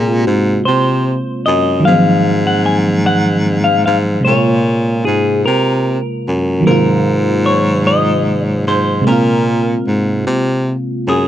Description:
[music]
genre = slow six-eight R&B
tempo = 50 BPM (dotted quarters)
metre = 6/8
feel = straight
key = unclear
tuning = A4 = 439 Hz
[part]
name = semi-hollow electric guitar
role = melody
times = 0.0-11.3 s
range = Ab4 to Ab5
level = -17 LUFS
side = left 1 dB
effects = none
[part]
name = FM electric piano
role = accompaniment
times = 0.0-11.3 s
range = C3 to F4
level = -17 LUFS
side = right 1 dB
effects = chorus
[part]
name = warm baritone saxophone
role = bass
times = 0.0-11.3 s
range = Gb2 to C3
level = -15 LUFS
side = equal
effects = none
[sound]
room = light reverb, studio reverb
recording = dark, warm production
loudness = -12 LUFS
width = side -11 dB against mid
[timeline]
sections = 0.0-11.3 A section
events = none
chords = 0.0 Bbsus2; 1.9 Ab13; 4.3 Bbm9; 6.7 Ab13; 9.1 Bbsus2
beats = 0.66 | 1.85 3.06 | 4.25 5.46 | 6.66 7.86 | 9.05 10.26

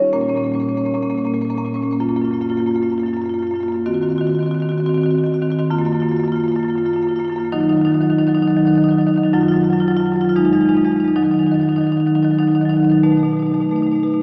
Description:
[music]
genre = classical, contemporary piece for solo marimba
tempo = 227 BPM (eighths)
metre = 7/8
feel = rubato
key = unclear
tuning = A4 = 439 Hz
[part]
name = marimba with medium mallets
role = solo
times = 0.0-14.2 s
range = F2 to Gb4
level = -18 LUFS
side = equal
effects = none
[sound]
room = wet church reverb, RT60 3.5 s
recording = recorded in a church or concert hall, small speaker sound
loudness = -18 LUFS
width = mono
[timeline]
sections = 0.1-14.2 A section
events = none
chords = 0.1 Bbm; 2.0 Gbmaj7; 3.9 Ebm6; 5.7 Gbmaj7; 7.5 Ebm; 9.3 N.C.; 10.4 Fm7; 11.1 Ebm; 13.0 Cb7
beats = | 0.12 0.39 0.66 0.93 1.20 1.47 1.73 | 2.00 2.27 2.54 2.80 3.06 3.33 3.60 | 3.86 4.13 4.39 4.65 4.92 5.18 5.45 | 5.71 5.97 6.23 6.49 6.75 7.01 7.27 | 7.53 7.78 8.04 8.30 8.56 8.82 9.08 | 9.33 9.59 9.85 10.10 10.36 10.62 10.88 | 11.15 11.41 11.67 11.94 12.20 12.47 12.75 | 13.03 13.32 13.60 13.88 14.17

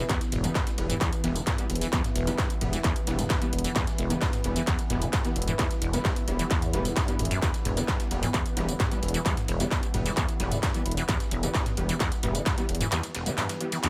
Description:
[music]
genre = driving peak-time techno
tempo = 131 BPM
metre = 4/4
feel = straight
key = E minor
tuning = A4 = 440 Hz
[part]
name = acid bass, saw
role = riff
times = 0.0-13.9 s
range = E1 to E3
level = -36 LUFS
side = equal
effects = lush chorus, sidechain pumping, tape echo
[part]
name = analog drone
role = drone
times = 0.0-13.9 s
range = E3 to B3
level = -39 LUFS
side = equal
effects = chorus, sidechain pumping
[part]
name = rave stab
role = stabs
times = 0.1-13.9 s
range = E3 to B3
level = -37 LUFS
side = equal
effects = chorus, built-in reverb, sidechain pumping, tape echo
[part]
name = dusty soul sampler-style drum kit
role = drums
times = 0.1-13.9 s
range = hi-hat, ride cymbal, snare drum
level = -46 LUFS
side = equal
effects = none
[part]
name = electronic kick drum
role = drums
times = 0.1-12.6 s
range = none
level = -31 LUFS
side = equal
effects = distortion, overdrive
[part]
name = techno drum kit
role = drums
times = 0.1-13.9 s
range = handclaps, hi-hat, snare drum, tambourine, toms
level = -34 LUFS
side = equal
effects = overdrive
[part]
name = detuned saw bass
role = bass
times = 0.3-12.8 s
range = E1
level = -34 LUFS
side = equal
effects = sidechain pumping
[sound]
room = light reverb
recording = none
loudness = -27 LUFS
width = mono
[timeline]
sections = 0.0-13.9 A section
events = kick drops out 12.9-13.9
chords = 0.0 Em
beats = | 0.10 0.55 1.01 1.47 | 1.93 2.38 2.84 3.30 | 3.76 4.22 4.67 5.13 | 5.59 6.05 6.51 6.96 | 7.42 7.88 8.34 8.80 | 9.26 9.71 10.17 10.63 | 11.09 11.54 12.00 12.46 | 12.92 13.38 13.84

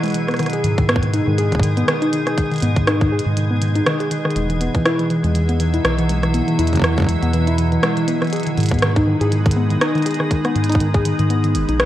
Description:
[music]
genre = IDM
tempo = 121 BPM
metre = 4/4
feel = swing 56% on 16ths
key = unclear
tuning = A4 = 437 Hz
[part]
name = icy glass pad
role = sustained chords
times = 0.0-11.9 s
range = B2 to G#4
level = -23 LUFS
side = equal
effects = chorus, built-in reverb
[part]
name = warbly dusty pluck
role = arpeggios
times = 0.0-11.9 s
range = D#3 to B4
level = -20 LUFS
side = left 1 dB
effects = chorus, digital delay
[part]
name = glitchy drum kit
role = drums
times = 0.0-11.9 s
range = hi-hat, rim click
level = -23 LUFS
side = right 1 dB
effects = studio reverb
[part]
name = round analog bass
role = bass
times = 0.6-11.9 s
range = E1 to G#2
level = -20 LUFS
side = equal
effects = none
[part]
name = electronic kick drum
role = drums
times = 0.8-11.0 s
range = none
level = -18 LUFS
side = equal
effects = studio reverb
[sound]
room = moderate echo chamber reverb, RT60 1.3 s, digital ambience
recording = worn, warbling old tape, cassette tape, warbly pitch drift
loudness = -15 LUFS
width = side -13 dB against mid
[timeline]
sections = 0.0-11.9 A section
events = none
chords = 0.4 G#m; 4.4 Eadd9; 8.3 G#m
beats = | 0.39 0.89 1.38 1.88 | 2.38 2.87 3.37 3.86 | 4.36 4.86 5.35 5.85 | 6.34 6.84 7.33 7.83 | 8.33 8.82 9.32 9.81 | 10.31 10.81 11.30 11.80

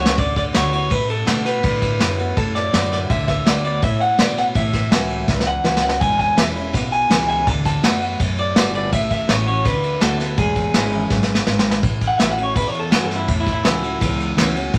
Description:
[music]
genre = rockabilly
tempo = 165 BPM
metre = 4/4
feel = straight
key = A major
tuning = A4 = 440 Hz
[part]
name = electric guitar through a small old amp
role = melody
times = 0.0-14.6 s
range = E4 to A5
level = -24 LUFS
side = equal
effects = warbly pitch drift
[part]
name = picked steel-string acoustic guitar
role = accompaniment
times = 0.0-14.8 s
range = E2 to F#4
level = -27 LUFS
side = equal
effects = none
[part]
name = upright bass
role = bass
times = 0.0-14.8 s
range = E1 to B2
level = -27 LUFS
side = equal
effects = none
[part]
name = vintage brush drum kit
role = drums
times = 0.1-14.8 s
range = kick drum, ride cymbal, snare drum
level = -22 LUFS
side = equal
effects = none
[sound]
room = moderate studio ambience, RT60 0.5 s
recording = vinyl crackle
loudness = -19 LUFS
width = mono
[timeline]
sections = 0.0-11.8 A section; 11.8-14.8 B section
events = drum fill 0.0, 5.3-6.0, 11.1-11.8; clean electric guitar solo 11.8-14.8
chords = 0.2 D6; 4.6 A6; 6.0 E6; 7.5 D6; 8.9 A6; 9.7 D6; 10.4 E6; 11.8 A6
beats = | 0.18 0.54 0.91 1.27 | 1.64 2.00 2.37 2.73 | 3.10 3.46 3.83 4.19 | 4.55 4.92 5.28 5.65 | 6.01 6.38 6.74 7.11 | 7.47 7.83 8.20 8.56 | 8.93 9.29 9.65 10.02 | 10.38 10.74 11.11 11.47 | 11.83 12.20 12.56 12.92 | 13.29 13.65 14.01 14.38 | 14.74

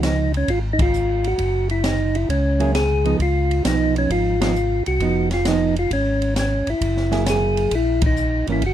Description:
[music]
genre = soul jazz organ trio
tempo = 133 BPM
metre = 4/4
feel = swing 68% on 8ths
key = Db mixolydian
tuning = A4 = 441 Hz
[part]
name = percussive tonewheel organ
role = melody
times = 0.0-8.7 s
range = Db4 to Ab4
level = -21 LUFS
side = equal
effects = slow rotary speaker
[part]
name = hollow-body jazz guitar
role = accompaniment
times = 0.0-8.6 s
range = Fb3 to Ab4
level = -24 LUFS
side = right 6 dB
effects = none
[part]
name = mellow tonewheel organ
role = bass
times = 0.0-8.7 s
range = F1 to Db2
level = -22 LUFS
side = equal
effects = overdrive, chorus vibrato, slow rotary speaker
[part]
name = open jazz drum kit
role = drums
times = 0.0-8.7 s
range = hi-hat, kick drum, ride cymbal, snare drum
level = -26 LUFS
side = equal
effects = none
[sound]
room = light reverb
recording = dark, warm production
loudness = -17 LUFS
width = side -11 dB against mid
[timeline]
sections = 0.0-8.7 A section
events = band accent 0.7, 4.3, 7.9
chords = 0.0 Db9; 1.4 Gb7sus2; 3.2 Db9; 6.8 Gb9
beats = 0.03 0.49 0.94 | 1.39 1.84 2.29 2.75 | 3.20 3.65 4.10 4.55 | 5.01 5.46 5.91 6.36 | 6.82 7.27 7.72 8.17 | 8.62

